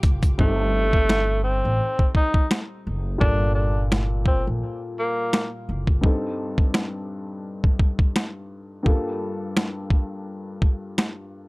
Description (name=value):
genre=hip hop, boom-bap hip-hop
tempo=85 BPM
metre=4/4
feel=swing 55% on 16ths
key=unclear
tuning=A4 = 440 Hz
part: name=dark upright piano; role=accompaniment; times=0.0-11.5 s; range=G2 to A4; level=-30 LUFS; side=left 2 dB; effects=cassette tape, high-pass filter, low-pass filter
part: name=upright bass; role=bass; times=0.0-6.0 s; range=F#1 to Bb1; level=-24 LUFS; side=equal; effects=transformer saturation
part: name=boom bap sampler-style drum kit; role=drums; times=0.0-11.2 s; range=hi-hat, kick drum, snare drum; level=-19 LUFS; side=equal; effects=none
part: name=clear tenor saxophone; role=melody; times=0.4-5.5 s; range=A3 to Eb4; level=-25 LUFS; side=equal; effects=high-pass filter, low-pass filter
room=little or no reverb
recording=dry, gritty hardware recording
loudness=-20 LUFS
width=side -25 dB against mid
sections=0.4-11.5 A section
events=break 0.4-11.5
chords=0.4 Am7b5/G; 3.2 Gm7; 6.0 Am7b5/G; 8.9 Gm7